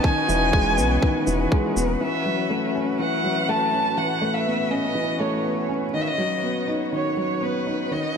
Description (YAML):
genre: piano and strings electronica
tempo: 122 BPM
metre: 4/4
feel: straight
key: F# dorian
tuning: A4 = 440 Hz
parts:
  - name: dark violin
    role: melody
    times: 0.0-8.2 s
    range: B4 to A5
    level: -25 LUFS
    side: right 1 dB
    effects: digital delay
  - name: muted string quartet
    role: sustained chords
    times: 0.0-8.2 s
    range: A2 to E5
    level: -28 LUFS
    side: left 5 dB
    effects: sidechain pumping
  - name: felt-muted upright piano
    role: riff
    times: 0.0-8.1 s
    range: D#3 to D#4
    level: -25 LUFS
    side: right 1 dB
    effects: digital delay
  - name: electronic kick drum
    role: drums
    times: 0.0-1.6 s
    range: none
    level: -22 LUFS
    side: equal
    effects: overdrive
  - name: warm sub bass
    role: bass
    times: 0.3-2.0 s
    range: E1 to B1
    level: -25 LUFS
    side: equal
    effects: tube saturation, sidechain pumping
  - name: shaker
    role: drums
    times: 0.3-1.9 s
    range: none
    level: -32 LUFS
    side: equal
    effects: none
room: moderate concert hall reverb, RT60 1.9 s, small room ambience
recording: none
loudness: -20 LUFS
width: side -6 dB against mid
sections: 0.0-2.0 A section; 2.0-8.2 B section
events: none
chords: 0.0 Emaj7; 2.0 F#m7; 4.0 Aadd9; 5.9 B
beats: | 0.04 0.54 1.03 1.52 | 2.01 2.50 2.99 3.49 | 3.98 4.47 4.96 5.45 | 5.95 6.44 6.93 7.42 | 7.91